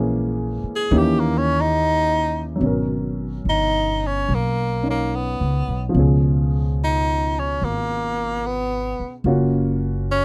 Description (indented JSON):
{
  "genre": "jazz ballad",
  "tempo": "72 BPM",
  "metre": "4/4",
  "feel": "swing 68% on 8ths",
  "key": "G# minor",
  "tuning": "A4 = 444 Hz",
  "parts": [
    { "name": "warm upright piano", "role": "accompaniment", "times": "0.0-10.2 s", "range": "B2 to C#5", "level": "-27 LUFS", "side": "equal", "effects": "none" },
    { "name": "upright bass", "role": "bass", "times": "0.0-10.2 s", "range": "F#1 to D#2", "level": "-24 LUFS", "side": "equal", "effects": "none" },
    { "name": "bright tenor saxophone", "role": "melody", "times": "0.8-10.2 s", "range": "A#3 to G#4", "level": "-24 LUFS", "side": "equal", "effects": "none" }
  ],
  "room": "light reverb",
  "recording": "dry, close 1970s-style studio recording",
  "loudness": "-21 LUFS",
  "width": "mono",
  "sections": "0.0-2.6 A section; 2.6-10.2 B section",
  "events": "tenor saxophone solo 0.0-2.6",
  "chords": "0.0 A#m7b5; 0.9 D#7b9; 2.6 G#m11; 6.0 C#7; 9.3 F#maj7"
}